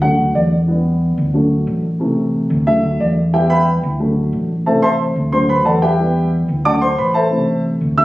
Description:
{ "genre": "latin, salsa", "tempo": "181 BPM", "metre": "4/4", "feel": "straight", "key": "unclear", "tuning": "A4 = 445 Hz", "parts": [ { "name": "dark grand piano", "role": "accompaniment", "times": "0.0-8.0 s", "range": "C3 to E6", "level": "-15 LUFS", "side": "equal", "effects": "none" }, { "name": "hollow-body short-scale fingered electric bass", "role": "bass", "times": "0.0-8.0 s", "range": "A1 to E2", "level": "-19 LUFS", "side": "equal", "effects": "none" } ], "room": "moderate studio reverb, RT60 0.8 s", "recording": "recorded on a phone in the room, studio reverb", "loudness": "-14 LUFS", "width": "side -17 dB against mid", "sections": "0.0-8.0 A section", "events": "grand piano solo 0.0-8.0", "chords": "0.0 D; 0.7 Em; 1.3 D; 2.0 Am; 2.7 D; 3.3 Em; 4.0 D; 4.7 Am; 5.3 D; 6.0 Em; 6.7 D; 7.3 Am" }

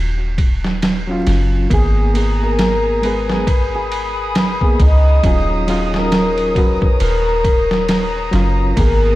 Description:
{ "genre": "trip hop", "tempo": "68 BPM", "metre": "4/4", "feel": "swing 58% on 16ths", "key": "unclear", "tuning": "A4 = 439 Hz", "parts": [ { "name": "soft 808-style bass", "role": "bass", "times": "0.0-9.2 s", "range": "D#1 to C#2", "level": "-17 LUFS", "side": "equal", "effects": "none" }, { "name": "trip hop sampler-style drum kit", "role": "drums", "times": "0.4-9.0 s", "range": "kick drum, ride cymbal, snare drum", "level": "-18 LUFS", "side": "right 1 dB", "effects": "none" }, { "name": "overdriven reed electric piano", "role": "accompaniment", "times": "1.1-9.2 s", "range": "F#3 to G#4", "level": "-22 LUFS", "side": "equal", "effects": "tremolo, tape echo" }, { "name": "cimbalom", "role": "melody", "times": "1.7-9.2 s", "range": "D#4 to B4", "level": "-19 LUFS", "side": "left 2 dB", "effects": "vintage 12-bit sampler grit" }, { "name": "muted studio violin section", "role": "sustained chords", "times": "1.7-9.2 s", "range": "C#5 to D#6", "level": "-24 LUFS", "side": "left 2 dB", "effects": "none" } ], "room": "light reverb", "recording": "vinyl crackle", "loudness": "-13 LUFS", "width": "side -16 dB against mid", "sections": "0.0-9.2 A section", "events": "none", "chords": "0.0 D#m7; 1.7 G#madd9; 5.2 D#m7" }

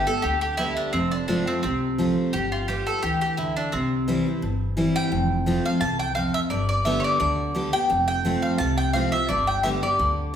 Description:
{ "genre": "bluegrass", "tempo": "172 BPM", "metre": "4/4", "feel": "swing 55% on 8ths", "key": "unclear", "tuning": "A4 = 436 Hz", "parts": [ { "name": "mandolin", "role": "melody", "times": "0.0-10.3 s", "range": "C4 to A5", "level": "-24 LUFS", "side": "equal", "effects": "none" }, { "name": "picked steel-string acoustic guitar", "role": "accompaniment", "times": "0.0-10.3 s", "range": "E2 to G4", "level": "-25 LUFS", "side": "equal", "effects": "none" }, { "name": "upright bass", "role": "bass", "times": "0.2-10.4 s", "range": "F1 to D2", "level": "-30 LUFS", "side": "equal", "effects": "none" } ], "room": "wet large studio reverb, RT60 1.2 s", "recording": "band playing live in one room", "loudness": "-21 LUFS", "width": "side -9 dB against mid", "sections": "0.0-5.1 A section; 5.1-10.4 B section", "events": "none", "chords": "0.0 G; 0.9 F; 2.3 G7; 3.7 C; 5.1 F; 6.5 G; 7.9 F; 9.3 G" }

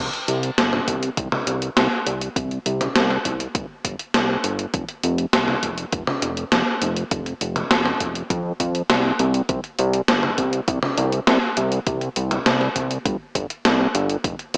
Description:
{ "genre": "synthwave", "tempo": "101 BPM", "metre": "4/4", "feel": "straight", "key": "unclear", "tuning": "A4 = 440 Hz", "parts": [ { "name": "fat analog bass", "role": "bass", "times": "0.0-14.6 s", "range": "F1 to F2", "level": "-22 LUFS", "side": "equal", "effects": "tube saturation, sidechain pumping" }, { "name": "gated 80s digital drum machine", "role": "drums", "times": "0.1-14.6 s", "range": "hi-hat, snare drum, toms", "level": "-20 LUFS", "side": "equal", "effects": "gated reverb, gated reverb snare" }, { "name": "electronic kick drum", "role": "drums", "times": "0.9-14.4 s", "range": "none", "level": "-27 LUFS", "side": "equal", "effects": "none" } ], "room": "light reverb", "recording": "small speaker sound", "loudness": "-19 LUFS", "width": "side -34 dB against mid", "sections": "0.0-14.6 A section", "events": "none", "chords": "none" }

